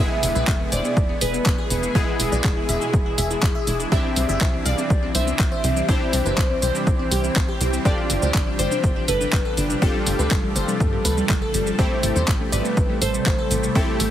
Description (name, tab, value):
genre	progressive house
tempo	122 BPM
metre	4/4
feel	straight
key	unclear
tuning	A4 = 440 Hz
part	soft octave-layered synth lead	melody	0.0-14.1 s	G#4 to E5	-28 LUFS	left 1 dB	chorus, phaser, tape echo
part	glassy wavetable pluck	second line	0.0-14.1 s	G#4 to E5	-33 LUFS	right 2 dB	none
part	shimmering ambient pad	sustained chords	0.1-14.1 s	B2 to A4	-29 LUFS	equal	chorus, built-in reverb, phaser, sidechain pumping
part	glassy wavetable pluck	arpeggios	0.0-14.1 s	G3 to F5	-28 LUFS	equal	chorus, sidechain pumping, tape echo
part	supersaw stab	stabs	0.0-14.1 s	G#3 to G#4	-29 LUFS	left 1 dB	sidechain pumping
part	tight sequencer bass	bass	0.0-14.1 s	E1 to G2	-26 LUFS	equal	sidechain pumping
part	pop drum kit	drums	0.2-14.1 s	handclaps, hi-hat, shaker	-27 LUFS	equal	sidechain pumping on cymbals, sidechain pumping on perc, sidechain pumping on hats
part	electronic kick drum	drums	0.5-13.9 s	none	-22 LUFS	equal	overdrive
part	congas	percussion	12.2-12.5 s	none	-35 LUFS	left 4 dB	none
room	light reverb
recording	heavily compressed radio sound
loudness	-18 LUFS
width	side -11 dB against mid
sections	0.0-14.1 A section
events	none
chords	0.0 E; 3.9 Cadd9; 7.9 G7sus4; 11.8 Am7